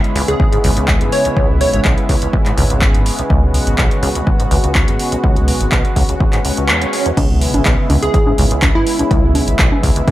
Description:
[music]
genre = acid house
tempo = 124 BPM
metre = 4/4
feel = straight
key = C# minor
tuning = A4 = 440 Hz
[part]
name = lush unison pad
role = sustained chords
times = 0.0-10.1 s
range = C#3 to F#4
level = -20 LUFS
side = equal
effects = chorus, sidechain pumping
[part]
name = booming analog drum machine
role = drums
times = 0.0-10.1 s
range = congas, crash cymbal, handclaps, hi-hat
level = -19 LUFS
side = equal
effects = none
[part]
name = acid bass, saw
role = riff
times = 0.2-10.1 s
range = B1 to G#2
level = -19 LUFS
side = equal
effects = wide subtle chorus, sidechain pumping, tape echo
[part]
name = round analog bass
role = bass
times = 0.2-9.9 s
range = G#1 to C#2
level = -17 LUFS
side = equal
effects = sidechain pumping
[part]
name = plucky unison lead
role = melody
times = 0.3-1.8, 8.0-9.4 s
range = E4 to C#5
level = -20 LUFS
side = equal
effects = dub echo
[part]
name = electronic kick drum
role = drums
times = 0.4-10.1 s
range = none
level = -15 LUFS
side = equal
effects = none
[part]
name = swell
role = sound effects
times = 6.4-7.2 s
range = none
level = -21 LUFS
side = right 2 dB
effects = none
[sound]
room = light reverb, digital ambience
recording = none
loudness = -12 LUFS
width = side -15 dB against mid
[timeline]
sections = 0.0-7.2 A section; 7.2-10.1 B section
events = swell 6.4-7.2; band accent 6.7; drop 7.2-10.1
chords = 0.0 C#m7

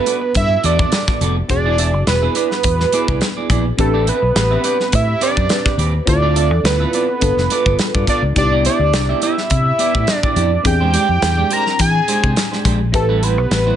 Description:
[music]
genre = polished 1980s jazz-funk pop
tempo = 105 BPM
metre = 4/4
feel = swing 54% on 16ths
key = unclear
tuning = A4 = 440 Hz
[part]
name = fat analog lead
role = melody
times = 0.0-13.8 s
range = A4 to Bb5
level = -18 LUFS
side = right 2 dB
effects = phaser
[part]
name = bell-like FM electric piano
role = accompaniment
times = 0.0-13.8 s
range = B3 to B4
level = -26 LUFS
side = left 2 dB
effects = phaser, analog chorus
[part]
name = electric guitar at the edge of break-up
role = riff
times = 0.0-13.8 s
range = G3 to E5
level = -23 LUFS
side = right 4 dB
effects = wide subtle chorus
[part]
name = modern studio drum kit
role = drums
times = 0.1-13.7 s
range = hi-hat, kick drum, snare drum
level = -20 LUFS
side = equal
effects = none
[part]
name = fingered electric bass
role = bass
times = 0.4-13.7 s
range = E1 to E3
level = -18 LUFS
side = left 1 dB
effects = none
[sound]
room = light reverb, studio reverb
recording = nothing above 10.5 kHz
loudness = -13 LUFS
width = side -10 dB against mid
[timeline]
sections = 0.0-13.8 A section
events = none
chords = 0.0 Gmaj9; 1.5 E7; 3.8 Am11; 6.1 Dm7; 7.2 G9; 8.4 Cmaj9; 10.6 E7alt; 12.9 Am9

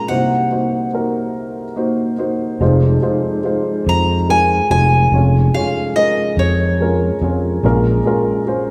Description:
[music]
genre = acoustic folk-pop ballad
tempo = 48 BPM (dotted quarters)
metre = 6/8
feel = straight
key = unclear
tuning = A4 = 440 Hz
[part]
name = picked steel-string acoustic guitar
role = melody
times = 0.0-7.3 s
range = Db5 to Bb5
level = -20 LUFS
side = equal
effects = none
[part]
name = dark upright piano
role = accompaniment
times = 0.0-8.7 s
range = F1 to Db5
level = -20 LUFS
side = equal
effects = none
[part]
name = sustaining fretless electric bass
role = bass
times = 2.6-8.0 s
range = F1 to F2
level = -18 LUFS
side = equal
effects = none
[sound]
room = wet recital hall reverb, RT60 1.7 s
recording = recorded in a church or concert hall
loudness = -16 LUFS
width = mono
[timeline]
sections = 0.0-8.7 A section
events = none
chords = 0.1 Cm7b5; 2.6 Fm7; 5.1 Db/F; 7.6 Bbm7

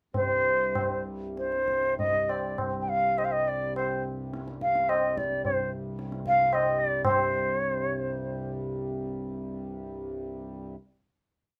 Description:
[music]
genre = indian classical, Hindustani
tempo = 97-132 BPM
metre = 3/4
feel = straight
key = C raga bageshri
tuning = A4 = 439 Hz
[part]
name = bansuri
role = melody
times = 0.1-8.5 s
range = C5 to G5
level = -28 LUFS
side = equal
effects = none
[part]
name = pedal harmonium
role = drone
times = 0.1-10.8 s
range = C2 to G2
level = -38 LUFS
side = equal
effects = none
[part]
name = tabla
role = percussion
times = 0.1-7.2 s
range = none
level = -35 LUFS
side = equal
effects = none
[sound]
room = light reverb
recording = none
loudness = -28 LUFS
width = mono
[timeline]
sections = 0.1-7.0 theme; 7.0-9.9 final chord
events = speeding up 0.1-9.9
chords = none

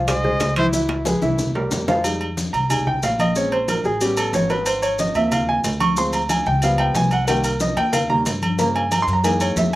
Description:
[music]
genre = Afro-Cuban jazz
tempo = 183 BPM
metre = 4/4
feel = straight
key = F minor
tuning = A4 = 435 Hz
[part]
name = warm baby grand piano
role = accompaniment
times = 0.0-9.7 s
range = Db3 to Db6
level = -20 LUFS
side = right 1 dB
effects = none
[part]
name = upright bass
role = bass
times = 0.0-9.8 s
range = Ab1 to G2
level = -25 LUFS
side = equal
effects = none
[part]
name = warm trumpet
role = melody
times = 0.1-0.7 s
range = C5 to Eb5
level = -23 LUFS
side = equal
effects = slapback echo
[part]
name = bongos and cowbell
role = percussion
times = 0.1-2.0, 7.3-9.7 s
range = none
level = -28 LUFS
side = left 5 dB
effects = none
[part]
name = congas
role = percussion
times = 0.1-9.7 s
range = none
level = -26 LUFS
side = left 1 dB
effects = none
[part]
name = maracas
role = percussion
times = 0.1-9.8 s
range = none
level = -31 LUFS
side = left 2 dB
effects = none
[part]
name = timbales and agogo bells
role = percussion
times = 0.1-9.7 s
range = none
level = -27 LUFS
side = right 2 dB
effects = none
[sound]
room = little or no reverb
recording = recorded outdoors, with no room sound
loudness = -17 LUFS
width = side -16 dB against mid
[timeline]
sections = 0.0-2.0 A section; 2.0-9.8 A section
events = trumpet solo 0.0-2.0; drum fill 0.7-2.0; grand piano solo 2.0-9.8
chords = 0.0 Fm7 (rootless); 0.7 Dbm7; 1.4 C7; 2.0 Fm7; 3.4 Bbm7; 4.0 A9; 4.7 Ab6; 6.0 Dm7b5; 6.6 Db7#11; 7.3 Cm7; 8.6 Gm7b5; 9.2 Gb13

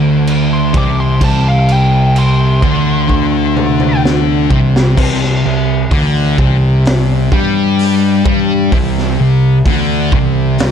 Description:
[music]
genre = stoner and doom metal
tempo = 64 BPM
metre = 4/4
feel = straight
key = unclear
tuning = A4 = 440 Hz
[part]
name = thick fuzz guitar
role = riff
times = 0.0-10.7 s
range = C3 to G3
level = -14 LUFS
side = left 10 dB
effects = distortion
[part]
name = thick fuzz guitar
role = riff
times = 0.0-10.7 s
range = C3 to G3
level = -15 LUFS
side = right 9 dB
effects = distortion
[part]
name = fuzz picked electric bass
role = bass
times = 0.0-10.7 s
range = C2 to G2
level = -17 LUFS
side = right 1 dB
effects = overdrive
[part]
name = raw garage drum kit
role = drums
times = 0.3-10.7 s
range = crash cymbal, hi-hat, kick drum, snare drum, toms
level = -17 LUFS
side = equal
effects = none
[part]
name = fuzz lead guitar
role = melody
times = 0.5-4.0 s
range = F5 to D6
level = -20 LUFS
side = equal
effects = distortion, tape echo
[sound]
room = studio ambience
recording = dark, warm production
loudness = -10 LUFS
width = side -8 dB against mid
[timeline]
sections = 0.0-5.0 A section; 5.0-10.7 B section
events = lead electric guitar solo 0.0-5.0; drum fill 3.1-5.0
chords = 0.0 Csus2; 5.0 C5

